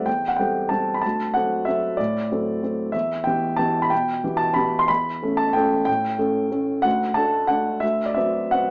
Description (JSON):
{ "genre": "classical, piano waltz", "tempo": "186 BPM", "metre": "3/4", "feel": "uneven beats, rubato", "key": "unclear", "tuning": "A4 = 440 Hz", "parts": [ { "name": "warm grand piano", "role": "solo", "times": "0.0-8.7 s", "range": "D2 to C6", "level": "-19 LUFS", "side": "equal", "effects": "none" } ], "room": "light reverb", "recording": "small speaker sound", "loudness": "-19 LUFS", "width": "side -28 dB against mid", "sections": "0.0-8.7 A section", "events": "none", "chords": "0.0 Am7; 1.0 D7; 2.9 Em; 4.9 A7/E; 6.8 D; 7.8 D13" }